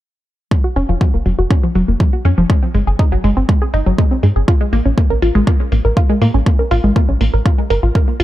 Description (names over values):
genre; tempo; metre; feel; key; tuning
melodic techno; 121 BPM; 4/4; straight; unclear; A4 = 440 Hz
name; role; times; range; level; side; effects
wide unison pluck; arpeggios; 0.5-8.2 s; F3 to Bb4; -18 LUFS; equal; sidechain pumping, digital delay
electronic kick drum; drums; 0.5-8.1 s; none; -13 LUFS; equal; none
tight sequencer bass; bass; 0.8-8.2 s; Gb1 to Bb2; -14 LUFS; equal; sidechain pumping
electronic hi-hat; drums; 0.8-8.2 s; none; -32 LUFS; left 2 dB; sidechain pumping on hats, low-pass filter on hats, low-pass filter on room
room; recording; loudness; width
little or no reverb; none; -12 LUFS; side -14 dB against mid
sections
0.5-8.2 A section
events
filter sweep on analog synth bass 0.5-8.2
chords
0.5 N.C.; 2.5 Ab5; 4.5 N.C.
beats
| 0.51 1.01 1.51 2.00 | 2.50 2.99 3.49 3.98 | 4.48 4.98 5.47 5.97 | 6.46 6.96 7.46 7.95